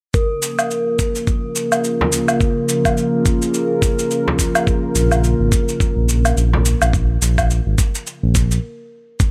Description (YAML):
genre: organic downtempo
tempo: 106 BPM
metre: 4/4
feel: swing 58% on 16ths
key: Bb minor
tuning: A4 = 440 Hz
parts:
  - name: warm analog pad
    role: sustained chords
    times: 0.1-8.6 s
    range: Db3 to Bb4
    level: -23 LUFS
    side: equal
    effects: chorus, sidechain pumping
  - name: cabasa and woodblock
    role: drums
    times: 0.1-9.3 s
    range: none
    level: -23 LUFS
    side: equal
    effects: none
  - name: electronic kick drum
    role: drums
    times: 0.1-9.3 s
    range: none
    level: -20 LUFS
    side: equal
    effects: none
  - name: bronze singing bowl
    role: texture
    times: 0.1-8.6 s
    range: Bb4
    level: -29 LUFS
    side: equal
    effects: none
  - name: frame drum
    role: percussion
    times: 2.0-6.6 s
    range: none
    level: -24 LUFS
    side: equal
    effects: none
  - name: smooth synth bass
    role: bass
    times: 5.0-8.6 s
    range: Ab1 to Bb1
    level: -18 LUFS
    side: equal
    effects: none
room: light reverb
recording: none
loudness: -17 LUFS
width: mono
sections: 0.1-9.2 A section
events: stop 8.6-9.2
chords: 0.1 Bbm